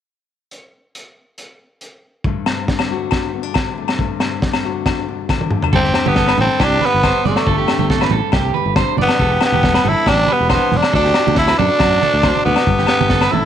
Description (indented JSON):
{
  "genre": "highlife guitar band",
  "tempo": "138 BPM",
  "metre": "4/4",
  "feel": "straight",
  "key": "G major",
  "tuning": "A4 = 440 Hz",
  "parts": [
    { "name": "crunchy breakbeat drum kit", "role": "drums", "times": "0.5-13.3 s", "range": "crash cymbal, hi-hat, kick drum, snare drum, toms", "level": "-20 LUFS", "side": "equal", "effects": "none" },
    { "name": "nylon-string guitar", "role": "accompaniment", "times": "2.3-13.5 s", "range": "E2 to G4", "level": "-24 LUFS", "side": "left 10 dB", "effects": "none" },
    { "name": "agogo bells", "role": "percussion", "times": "2.5-13.3 s", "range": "none", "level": "-25 LUFS", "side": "left 14 dB", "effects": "none" },
    { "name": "raspy tenor saxophone", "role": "melody", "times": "5.7-13.5 s", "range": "A3 to E4", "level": "-16 LUFS", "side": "equal", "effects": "none" },
    { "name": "electric guitar at the edge of break-up", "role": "arpeggios", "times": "5.7-13.5 s", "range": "F#4 to D5", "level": "-21 LUFS", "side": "right 11 dB", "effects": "slapback echo" },
    { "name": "fingered electric bass", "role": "bass", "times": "5.7-13.4 s", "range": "E1 to F#2", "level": "-20 LUFS", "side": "equal", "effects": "none" },
    { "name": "congas", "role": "percussion", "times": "6.1-13.4 s", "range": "none", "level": "-23 LUFS", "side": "right 10 dB", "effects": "none" }
  ],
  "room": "light reverb",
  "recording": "1960s-style stereo with parts hard left and right",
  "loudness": "-13 LUFS",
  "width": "side -9 dB against mid",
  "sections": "0.5-2.2 A section; 2.2-5.7 B section; 5.7-13.5 C section",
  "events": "drum fill 5.3-5.7",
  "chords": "0.5 N.C.; 2.2 Gsus2; 9.2 Em7; 10.9 D; 12.7 Gsus2"
}